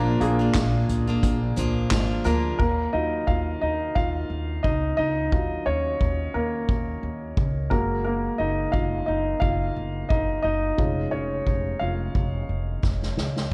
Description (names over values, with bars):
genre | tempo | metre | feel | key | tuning
piano-driven pop | 88 BPM | 4/4 | swing 56% on 16ths | Eb minor | A4 = 441 Hz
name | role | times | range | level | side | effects
warm upright piano | accompaniment | 0.0-13.5 s | Gb3 to F5 | -28 LUFS | equal | none
picked steel-string acoustic guitar | riff | 0.0-2.6 s | Bb2 to F4 | -29 LUFS | equal | none
upright bass | bass | 0.0-13.5 s | F1 to Eb2 | -30 LUFS | equal | none
soft-mallet drum kit | drums | 0.2-13.5 s | crash cymbal, handclaps, hi-hat, kick drum, snare drum, toms | -28 LUFS | equal | none
room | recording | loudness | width
light reverb | worn, warbling old tape, cassette tape, warbly pitch drift | -25 LUFS | mono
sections
0.0-2.6 A section; 2.6-13.5 B section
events
upright piano solo 2.6-13.5; drum fill 12.8-13.5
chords
0.0 Bb; 2.6 Ebmadd9; 7.7 Gbadd9; 10.8 Db/F